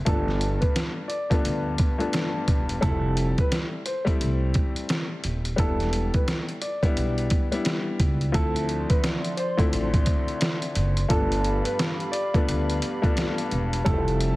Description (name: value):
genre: hip hop, boom-bap hip-hop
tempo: 87 BPM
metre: 4/4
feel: swing 61% on 16ths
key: D dorian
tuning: A4 = 440 Hz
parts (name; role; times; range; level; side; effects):
- upright bass; bass; 0.0-14.4 s; Eb1 to D2; -26 LUFS; equal; none
- warm upright piano; melody; 0.1-14.4 s; A4 to D5; -31 LUFS; right 1 dB; high-pass filter, low-pass filter, digital delay
- warm grand piano; accompaniment; 0.1-14.4 s; D2 to E4; -28 LUFS; left 3 dB; cassette tape, high-pass filter, low-pass filter
- trip hop sampler-style drum kit; drums; 0.1-14.4 s; hi-hat, kick drum, snare drum; -25 LUFS; equal; none
- dark analog pad; sustained chords; 8.3-14.4 s; F3 to C6; -34 LUFS; right 1 dB; chorus, high-pass filter, low-pass filter
room: small room ambience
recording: heavily compressed radio sound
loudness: -22 LUFS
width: side -19 dB against mid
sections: 0.0-8.3 A section; 8.3-14.4 B section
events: none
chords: 0.1 G7; 2.8 Fmaj7; 5.6 Em7; 8.3 Dm7; 11.1 G7; 13.9 Fmaj7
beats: | 0.07 0.76 1.45 2.14 | 2.83 3.52 4.21 4.90 | 5.58 6.28 6.96 7.65 | 8.34 9.03 9.72 10.41 | 11.10 11.79 12.48 13.17 | 13.86